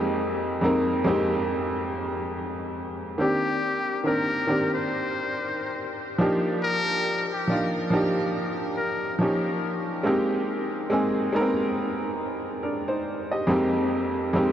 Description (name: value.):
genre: hip hop.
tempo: 70 BPM.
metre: 4/4.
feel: swing 59% on 16ths.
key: unclear.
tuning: A4 = 439 Hz.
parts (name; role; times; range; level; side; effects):
bright upright piano; accompaniment; 0.0-14.5 s; F2 to Eb5; -24 LUFS; equal; low-pass filter.
trumpet with metal mute; melody; 3.2-9.2 s; G4 to C5; -29 LUFS; left 3 dB; low-pass filter, ping-pong delay.
room: wet huge ambient reverb, RT60 8.0 s.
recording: dreamy mix soaked in reverb, cassette tape.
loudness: -23 LUFS.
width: side -10 dB against mid.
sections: 0.0-14.5 A section.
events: none.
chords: 0.0 Fm11; 3.2 Cm9; 6.2 Ebmaj9; 9.2 Eb9; 10.1 Abmaj7; 13.5 Fm11.